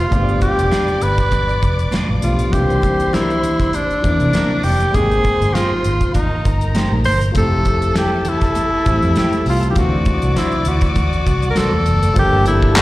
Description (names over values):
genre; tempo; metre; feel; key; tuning
lush 1970s-style soul; 100 BPM; 4/4; swing 54% on 16ths; G dorian; A4 = 439 Hz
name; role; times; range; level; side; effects
clear tenor saxophone; melody; 0.0-12.8 s; D4 to C5; -19 LUFS; equal; slapback echo
warm studio string section; second line; 0.0-12.8 s; A4 to D6; -28 LUFS; left 2 dB; slapback echo
warm grand piano; accompaniment; 0.0-12.8 s; Eb3 to G5; -24 LUFS; left 3 dB; slapback echo
vintage muted fingered electric bass; bass; 0.0-12.8 s; F1 to C3; -18 LUFS; equal; none
damped 70s drum kit; drums; 0.1-12.8 s; hi-hat, kick drum, snare drum; -20 LUFS; equal; none
congas; percussion; 0.1-12.8 s; none; -27 LUFS; right 1 dB; slapback echo
electric guitar at the edge of break-up; riff; 0.7-12.8 s; A3 to C5; -26 LUFS; right 3 dB; slapback echo
group handclap; percussion; 12.8 s; none; -11 LUFS; left 1 dB; none
room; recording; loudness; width
light reverb; live gig heard through the venue's PA, recital hall reverb; -14 LUFS; side -17 dB against mid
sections
0.0-12.2 A section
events
none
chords
0.1 G7; 2.5 C9; 4.9 Abmaj7; 7.4 Fmaj9; 9.8 D7; 12.2 Gm7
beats
| 0.12 0.72 1.32 1.93 | 2.53 3.14 3.74 4.34 | 4.95 5.55 6.15 6.75 | 7.36 7.96 8.56 9.16 | 9.76 10.37 10.96 11.57 | 12.17 12.77